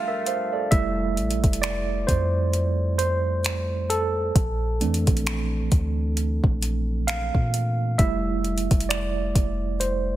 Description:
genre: contemporary R&B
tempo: 66 BPM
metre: 4/4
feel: swing 58% on 16ths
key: F major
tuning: A4 = 439 Hz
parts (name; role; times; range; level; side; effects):
- tine electric piano; accompaniment; 0.0-10.2 s; E3 to F5; -26 LUFS; right 3 dB; medium stereo tremolo
- clean electric guitar; arpeggios; 0.0-0.7 s; A3 to F4; -36 LUFS; left 6 dB; tape echo
- smooth R&B drum kit; drums; 0.3-10.1 s; finger snaps, hi-hat, kick drum; -23 LUFS; equal; soft clipping on snare
- soft 808-style bass; bass; 0.7-10.2 s; F1 to Bb2; -26 LUFS; equal; none
room: little or no reverb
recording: dense, heavily limited modern master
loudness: -21 LUFS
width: side -14 dB against mid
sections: 0.7-10.2 A section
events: break 0.0-0.7; tine electric piano solo 0.7-10.2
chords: 0.0 Gm7; 0.7 Fmaj9; 4.4 Bbmaj9#11; 8.0 Fmaj9

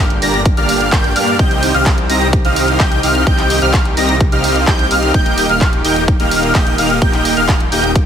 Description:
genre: EDM, festival progressive house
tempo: 128 BPM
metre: 4/4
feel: straight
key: unclear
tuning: A4 = 441 Hz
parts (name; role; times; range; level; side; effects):
- lush unison pad; sustained chords; 0.0-8.1 s; D3 to G4; -23 LUFS; equal; chorus, sidechain pumping
- wide unison lead; arpeggios; 0.0-7.9 s; F6 to Bb6; -18 LUFS; equal; ensemble chorus, sidechain pumping, digital delay
- dense compressed supersaw; riff; 0.0-7.9 s; Bb3 to Bb5; -17 LUFS; equal; sidechain pumping, digital delay
- wide detuned saw bass; bass; 0.0-8.0 s; Eb1 to G2; -20 LUFS; equal; chorus, sidechain pumping
- house drum kit; drums; 0.1-8.0 s; handclaps, hi-hat; -21 LUFS; equal; overdrive
- electronic kick drum; drums; 0.5-8.0 s; none; -14 LUFS; equal; none
room: light reverb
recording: heavily compressed radio sound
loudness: -11 LUFS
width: side -8 dB against mid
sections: 0.0-8.1 A section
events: none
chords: 0.0 Gm; 1.4 Cm; 5.1 Eb

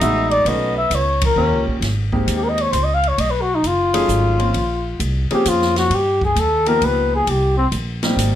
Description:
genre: jazz, small-group swing and bop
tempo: 132 BPM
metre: 3/4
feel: swing 67% on 8ths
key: Ab major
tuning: A4 = 438 Hz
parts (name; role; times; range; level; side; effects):
- breathy trumpet; melody; 0.0-7.7 s; C4 to F5; -18 LUFS; left 2 dB; none
- breathy tenor saxophone; second line; 0.0-1.8 s; B3 to D#4; -24 LUFS; right 2 dB; none
- clear concert grand piano; accompaniment; 0.0-8.4 s; F3 to G#4; -22 LUFS; equal; none
- upright bass; bass; 0.0-8.4 s; F#1 to G2; -21 LUFS; equal; none
- open jazz drum kit; drums; 0.0-8.3 s; hi-hat, kick drum, ride cymbal, snare drum; -26 LUFS; equal; none
room: moderate studio reverb, RT60 0.6 s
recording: none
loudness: -15 LUFS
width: side -11 dB against mid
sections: 0.0-1.8 A section; 1.8-8.4 B section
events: band accent 1.1; trumpet solo 1.8-8.4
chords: 0.5 B9; 1.4 D#9; 1.8 Abmaj9; 3.2 B13; 4.5 Bbm9; 5.9 G7alt; 7.3 Cm7

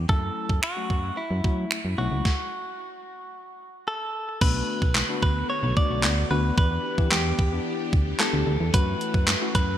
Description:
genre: dance-pop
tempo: 111 BPM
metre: 4/4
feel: straight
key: B minor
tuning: A4 = 439 Hz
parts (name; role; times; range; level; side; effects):
- solid FM bass; bass; 0.0-9.8 s; B1 to F#3; -27 LUFS; equal; sidechain pumping
- direct-recorded clean electric guitar; melody; 0.1-9.8 s; E4 to D5; -30 LUFS; equal; ping-pong delay
- tine electric piano; accompaniment; 0.1-9.8 s; F#3 to G4; -33 LUFS; left 5 dB; wide subtle chorus, sidechain pumping
- gated 80s digital drum machine; drums; 0.1-9.7 s; crash cymbal, finger snaps, handclaps, hi-hat, kick drum, snare drum; -24 LUFS; equal; gated reverb, gated reverb snare
- string machine, violas; sustained chords; 4.4-9.8 s; D3 to G4; -33 LUFS; equal; ensemble chorus, sidechain pumping
room: light reverb, digital ambience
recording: bright 1980s-style digital production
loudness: -22 LUFS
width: side -11 dB against mid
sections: 0.0-4.4 A section; 4.4-9.8 B section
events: stop 2.3-4.4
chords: 0.1 F#m7; 2.3 N.C.; 4.4 Bm7; 6.6 Em7; 8.7 F#m7

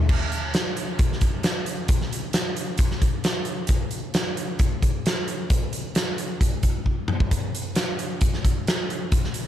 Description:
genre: rock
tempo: 133 BPM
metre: 4/4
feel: straight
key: none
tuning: none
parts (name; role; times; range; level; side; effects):
- big rock drum kit; drums; 0.1-9.4 s; crash cymbal, hi-hat, kick drum, snare drum, toms; -22 LUFS; equal; none
room: little or no reverb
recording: none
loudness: -22 LUFS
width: side -11 dB against mid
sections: 0.1-9.5 A section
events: drum fill 6.9-7.3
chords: none

